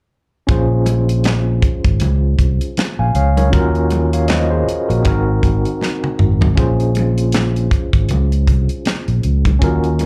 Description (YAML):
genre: lush 1970s-style soul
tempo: 79 BPM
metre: 4/4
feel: swing 58% on 16ths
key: Bb minor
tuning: A4 = 440 Hz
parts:
  - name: overdriven tine electric piano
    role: accompaniment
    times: 0.5-10.1 s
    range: C4 to Ab5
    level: -23 LUFS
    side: equal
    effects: fast tremolo, slapback echo
  - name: fingered electric bass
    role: bass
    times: 0.5-10.1 s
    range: Ab1 to Eb2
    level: -18 LUFS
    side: equal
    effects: none
  - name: tight funk drum kit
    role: drums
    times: 0.5-10.1 s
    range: hi-hat, kick drum, snare drum, toms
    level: -20 LUFS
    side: equal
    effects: none
  - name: congas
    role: percussion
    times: 0.5-10.1 s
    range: none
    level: -26 LUFS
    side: equal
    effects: slapback echo
room: little or no reverb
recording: live gig heard through the venue's PA, club reverb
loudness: -16 LUFS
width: mono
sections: 0.5-6.6 A section; 6.6-10.1 B section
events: drum fill 5.8-6.6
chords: 0.5 Bbm9; 3.5 Ebm7; 5.1 Ab7; 6.6 Bbm9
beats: | 0.49 1.25 2.01 2.77 | 3.53 4.29 5.05 5.81 | 6.57 7.33 8.10 8.86 | 9.62